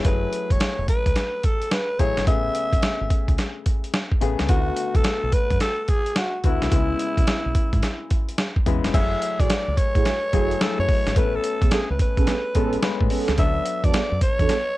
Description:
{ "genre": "R&B, new jack swing", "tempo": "108 BPM", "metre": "4/4", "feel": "swing 65% on 16ths", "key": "F# minor", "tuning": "A4 = 437 Hz", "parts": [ { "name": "warm concert grand piano", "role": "accompaniment", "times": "0.0-14.8 s", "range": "C#3 to B4", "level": "-29 LUFS", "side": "left 8 dB", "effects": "none" }, { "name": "deep dub fingered electric bass", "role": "bass", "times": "0.0-14.5 s", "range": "E1 to A2", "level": "-27 LUFS", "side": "equal", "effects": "none" }, { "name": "boom bap sampler-style drum kit", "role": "drums", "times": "0.0-14.7 s", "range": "crash cymbal, hi-hat, kick drum, snare drum", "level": "-21 LUFS", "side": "equal", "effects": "cassette tape" }, { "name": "raspy alto saxophone", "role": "melody", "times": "0.1-14.8 s", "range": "E4 to E5", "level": "-26 LUFS", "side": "equal", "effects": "cassette tape" }, { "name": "mellow synth brass", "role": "stabs", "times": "9.4-14.6 s", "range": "A3 to A4", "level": "-27 LUFS", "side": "right 7 dB", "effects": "chorus" } ], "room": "little or no reverb", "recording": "home recording on cassette", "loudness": "-19 LUFS", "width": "side -17 dB against mid", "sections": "0.0-8.9 A section; 8.9-14.8 B section", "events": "none", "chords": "0.1 F#m9; 2.3 Amaj9; 4.5 D6; 6.7 C#m7; 8.9 F#m9; 11.2 Amaj9; 13.4 D6" }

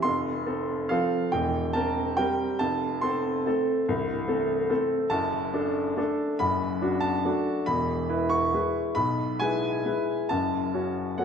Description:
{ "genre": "classical, piano waltz", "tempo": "131-152 BPM", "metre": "3/4", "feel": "rubato", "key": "unclear", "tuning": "A4 = 440 Hz", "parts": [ { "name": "bright grand piano", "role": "solo", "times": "0.0-11.2 s", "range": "C1 to C#6", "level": "-24 LUFS", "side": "equal", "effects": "none" } ], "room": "wet concert hall reverb, RT60 2.2 s", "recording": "minimal, uncompressed stereo recording", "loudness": "-24 LUFS", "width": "side -7 dB against mid", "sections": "0.0-11.2 A section", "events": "none", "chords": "0.0 F; 1.3 C7/E; 2.6 F; 5.1 D/F#; 7.7 E; 10.3 F#m" }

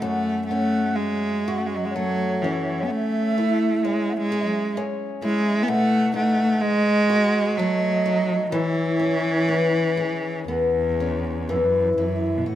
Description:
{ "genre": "celtic folk, Celtic slow air", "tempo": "63 BPM", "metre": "3/4", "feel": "rubato", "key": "E major", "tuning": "A4 = 440 Hz", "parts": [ { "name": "rich cello", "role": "melody", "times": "0.0-12.6 s", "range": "E2 to B3", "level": "-22 LUFS", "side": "equal", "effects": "none" }, { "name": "mellow baroque flute", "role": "second line", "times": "0.0-10.5 s", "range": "C#5 to G#5", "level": "-28 LUFS", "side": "right 2 dB", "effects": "none" }, { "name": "picked old ladder-braced acoustic guitar", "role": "accompaniment", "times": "0.0-12.6 s", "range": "F#2 to G#4", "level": "-25 LUFS", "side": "left 2 dB", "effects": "none" } ], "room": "light reverb", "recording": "close, detailed microphones", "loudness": "-20 LUFS", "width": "side -12 dB against mid", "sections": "0.0-11.5 A section; 11.5-12.6 B section", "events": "none", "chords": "0.0 F#m; 2.9 Amaj7; 5.7 B7; 8.5 E6; 11.5 Esus2" }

